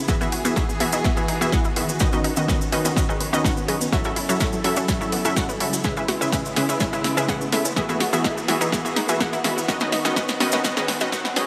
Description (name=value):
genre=progressive house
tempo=125 BPM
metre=4/4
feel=straight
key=unclear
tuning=A4 = 440 Hz
part: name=rich symphonic string section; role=sustained chords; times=0.0-11.5 s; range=C#3 to A4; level=-32 LUFS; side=equal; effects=sidechain pumping
part: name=analog pluck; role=arpeggios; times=0.0-11.5 s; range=F#3 to A4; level=-32 LUFS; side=equal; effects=chorus, sidechain pumping, dub echo
part: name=dark detuned saw bass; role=bass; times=0.0-11.5 s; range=none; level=barely audible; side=none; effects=none
part: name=riser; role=sound effects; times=4.1-11.5 s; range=none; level=-38 LUFS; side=equal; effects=none
part: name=unison pluck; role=stabs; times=0.1-11.5 s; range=C#3 to F#5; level=-26 LUFS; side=equal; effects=cassette tape, sidechain pumping, dub echo
part: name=electronic kick drum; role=drums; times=0.1-11.2 s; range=none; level=-28 LUFS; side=equal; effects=none
part: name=house drum kit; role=drums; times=0.1-11.5 s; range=hi-hat, snare drum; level=-30 LUFS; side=equal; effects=sidechain pumping on hats
part: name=cabasa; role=percussion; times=0.1-11.3 s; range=none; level=-33 LUFS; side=equal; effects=none
room=light reverb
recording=high-pass filter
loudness=-22 LUFS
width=mono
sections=0.0-11.5 A section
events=build-up 0.0-11.5; drum fill 0.0-11.5; filter sweep on synth arpeggio sound 0.0-11.5; filter sweep 0.0-11.5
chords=0.1 Eadd9; 2.0 Badd9/D#; 3.9 F#m7; 5.8 C#m7; 7.8 Eadd9; 9.7 Badd9/D#